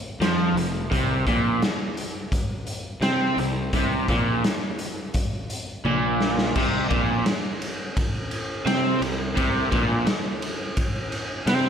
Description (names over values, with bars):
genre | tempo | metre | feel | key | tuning
blues rock power trio and southern rock | 85 BPM | 4/4 | straight | unclear | A4 = 440 Hz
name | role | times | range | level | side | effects
crunchy overdriven guitar | riff | 0.2-11.7 s | F2 to C4 | -24 LUFS | right 1 dB | none
fuzz picked electric bass | bass | 0.2-11.7 s | F1 to C3 | -29 LUFS | equal | overdrive
raw garage drum kit | drums | 0.2-11.6 s | crash cymbal, hi-hat, kick drum, ride cymbal, snare drum, toms | -25 LUFS | equal | none
room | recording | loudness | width
moderate scoring stage reverb, RT60 2.2 s | big arena sound | -22 LUFS | side -8 dB against mid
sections
0.0-6.6 A section; 6.6-11.7 A section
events
drum fill 5.8-6.6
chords
0.0 N.C.; 0.9 Bbsus2; 5.1 N.C.; 6.6 Bbsus2